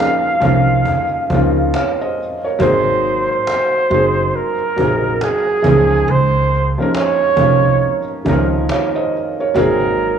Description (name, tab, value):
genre	lo-fi hip hop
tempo	69 BPM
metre	4/4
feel	swing 61% on 16ths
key	Db major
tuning	A4 = 440 Hz
part	breathy flugelhorn	melody	0.0-10.2 s	Ab4 to F5	-17 LUFS	right 3 dB	low-pass filter, plate reverb, analog delay
part	felt-muted upright piano	accompaniment	0.0-10.2 s	Eb3 to F5	-18 LUFS	left 1 dB	cassette tape, low-pass filter, plate reverb
part	cajon	drums	0.0-10.1 s	none	-25 LUFS	right 2 dB	cassette tape
part	upright bass	bass	0.4-10.2 s	Gb1 to Db2	-18 LUFS	right 2 dB	none
room	light reverb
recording	home recording on cassette, studio reverb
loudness	-13 LUFS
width	side -8 dB against mid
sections	0.0-10.2 A section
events	none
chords	0.0 Db6; 2.6 Ab9; 5.6 Db6; 9.6 Ab9